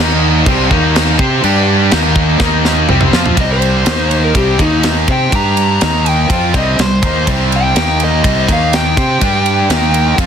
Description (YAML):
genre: hard rock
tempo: 123 BPM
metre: 4/4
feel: straight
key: unclear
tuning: A4 = 440 Hz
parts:
  - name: bright tonewheel organ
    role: sustained chords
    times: 0.0-3.4 s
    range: G4 to Eb6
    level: -26 LUFS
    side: right 1 dB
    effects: none
  - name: heavy high-gain guitar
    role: riff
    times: 0.0-10.3 s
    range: C3 to C5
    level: -18 LUFS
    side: left 14 dB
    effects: distortion
  - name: high-gain distorted guitar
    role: riff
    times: 0.0-3.4 s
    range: C3 to C5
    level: -19 LUFS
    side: left 1 dB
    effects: distortion
  - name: tight distorted guitar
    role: riff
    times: 0.0-10.3 s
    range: C3 to C5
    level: -18 LUFS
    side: right 13 dB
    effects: distortion
  - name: fuzz fingered electric bass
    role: bass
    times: 0.0-10.3 s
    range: C2 to C3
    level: -15 LUFS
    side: equal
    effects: overdrive
  - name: tight metal drum kit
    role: drums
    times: 0.5-10.3 s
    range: crash cymbal, kick drum, ride cymbal, snare drum, toms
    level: -16 LUFS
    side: right 1 dB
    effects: soft clipping on kick
  - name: biting lead guitar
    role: melody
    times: 3.4-10.2 s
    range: Eb4 to Bb5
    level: -17 LUFS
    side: left 1 dB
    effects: overdrive
room: studio ambience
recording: dense, heavily limited modern master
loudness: -10 LUFS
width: side -8 dB against mid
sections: 0.0-3.4 A section; 3.4-10.3 B section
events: drum fill 2.4-3.4; lead electric guitar solo 3.4-10.3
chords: 0.5 C; 0.7 Eb5; 1.2 C; 1.4 G5; 1.9 Eb5; 2.9 C; 3.4 C5; 3.9 Eb5; 4.4 C5; 4.6 Eb5; 5.1 C5; 5.3 G5; 5.8 Eb5; 6.3 C5; 7.8 Eb5; 8.2 C5; 8.5 Eb5; 9.0 C5; 9.2 G5; 9.7 Eb5